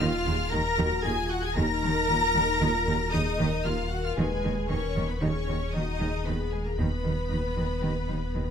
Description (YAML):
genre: cinematic, hybrid orchestral and electronic film score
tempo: 115 BPM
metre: 5/4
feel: straight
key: Eb minor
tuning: A4 = 440 Hz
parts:
  - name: rich symphonic violin section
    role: melody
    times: 0.0-8.5 s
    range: Ab5 to Bb6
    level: -35 LUFS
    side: left 4 dB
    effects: none
  - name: clear symphonic violin section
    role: second line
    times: 0.0-8.5 s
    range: Ab4 to Bb5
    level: -33 LUFS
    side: left 3 dB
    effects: none
  - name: clear symphonic viola section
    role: accompaniment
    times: 0.0-8.5 s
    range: Ab3 to Bb4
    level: -33 LUFS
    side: right 1 dB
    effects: none
  - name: dark French horn section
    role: sustained chords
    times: 0.0-8.5 s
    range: Eb4 to Cb5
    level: -35 LUFS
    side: left 4 dB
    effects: none
  - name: mellow tuba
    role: bass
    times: 0.0-8.5 s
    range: Eb2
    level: -34 LUFS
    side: right 4 dB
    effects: none
  - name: rich symphonic cello section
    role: bass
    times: 0.0-8.4 s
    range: Eb3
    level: -33 LUFS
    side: right 2 dB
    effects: none
  - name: rich symphonic double bass section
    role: bass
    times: 0.0-8.4 s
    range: Eb2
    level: -34 LUFS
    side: right 2 dB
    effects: none
  - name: sub bass with octave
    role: bass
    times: 0.0-8.5 s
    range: Eb1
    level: -32 LUFS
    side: left 1 dB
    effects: none
room: light reverb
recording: none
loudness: -25 LUFS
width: side -8 dB against mid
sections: 0.0-8.5 A section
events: none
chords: 0.0 Eb5